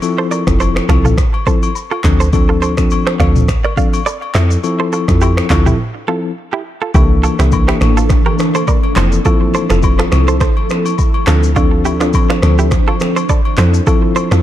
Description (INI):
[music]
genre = afrobeats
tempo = 104 BPM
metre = 4/4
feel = swing 55% on 16ths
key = unclear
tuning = A4 = 440 Hz
[part]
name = mellow tine electric piano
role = accompaniment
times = 0.0-14.4 s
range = E3 to A4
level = -17 LUFS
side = left 3 dB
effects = medium stereo tremolo
[part]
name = afro-pop drum kit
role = drums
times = 0.0-14.4 s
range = finger snaps, handclaps, kick drum, rim click, shaker, toms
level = -15 LUFS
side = equal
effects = overdrive
[part]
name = agogo bells and woodblock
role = percussion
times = 0.0-14.3 s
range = none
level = -25 LUFS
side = left 9 dB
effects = none
[part]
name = direct-recorded clean electric guitar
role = riff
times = 0.2-14.4 s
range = D4 to F5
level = -21 LUFS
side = right 6 dB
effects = digital delay
[part]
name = woody log drum bass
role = bass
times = 0.5-14.4 s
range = F1 to F2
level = -13 LUFS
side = equal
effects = none
[part]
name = ethereal airy pad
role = sustained chords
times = 7.7-14.4 s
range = E3 to C5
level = -21 LUFS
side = right 1 dB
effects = ensemble chorus, built-in reverb
[sound]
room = little or no reverb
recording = dark, warm production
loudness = -11 LUFS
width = side -12 dB against mid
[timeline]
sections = 0.0-6.9 A section; 6.9-14.4 B section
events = break 5.8-6.9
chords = 0.0 Fmaj7; 2.0 Dm7; 4.4 Fmaj7; 6.9 C13; 9.0 Fmaj7; 11.3 Dm7; 13.6 Fmaj7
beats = | 0.02 0.60 1.18 1.75 | 2.33 2.91 3.48 4.06 | 4.64 5.22 5.79 6.37 | 6.95 7.52 8.10 8.68 | 9.26 9.83 10.41 10.98 | 11.56 12.14 12.72 13.29 | 13.87